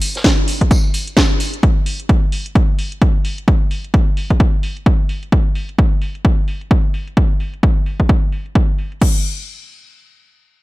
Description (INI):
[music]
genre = house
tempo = 130 BPM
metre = 4/4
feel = swing 58% on 16ths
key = none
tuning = none
[part]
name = house drum kit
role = drums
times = 0.0-9.1 s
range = crash cymbal, hi-hat, snare drum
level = -22 LUFS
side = equal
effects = overdrive, low-pass filter on hats, low-pass filter on snare, low-pass filter on cymbals, low-pass filter on room
[part]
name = tambourine and snare drum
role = drums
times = 0.0-1.5 s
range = none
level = -26 LUFS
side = equal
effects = sidechain pumping on hats, high-pass filter on hats, high-pass filter on snare, sidechain pumping on perc, high-pass filter on perc, high-pass filter on room
[part]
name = electronic kick drum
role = drums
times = 0.2-9.1 s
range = none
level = -14 LUFS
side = equal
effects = overdrive
[sound]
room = little or no reverb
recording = none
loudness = -14 LUFS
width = side -19 dB against mid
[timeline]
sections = 0.0-9.0 A section; 9.0-10.6 B section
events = filter sweep on drum 0.0-9.0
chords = none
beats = 0.25 0.71 1.17 | 1.63 2.09 2.55 3.02 | 3.48 3.94 4.40 4.86 | 5.32 5.78 6.25 6.71 | 7.17 7.63 8.09 8.55 | 9.02